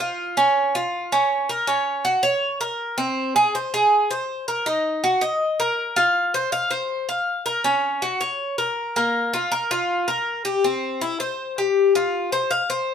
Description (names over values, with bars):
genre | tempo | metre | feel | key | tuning
latin | 161 BPM | 4/4 | straight | unclear | A4 = 442 Hz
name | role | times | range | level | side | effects
Cuban tres | solo | 0.0-12.9 s | Bb3 to F5 | -20 LUFS | equal | none
room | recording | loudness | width
moderate studio reverb, RT60 0.7 s | band playing live in one room | -20 LUFS | side -8 dB against mid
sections
0.0-1.7 A section; 1.7-12.9 B section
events
none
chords
none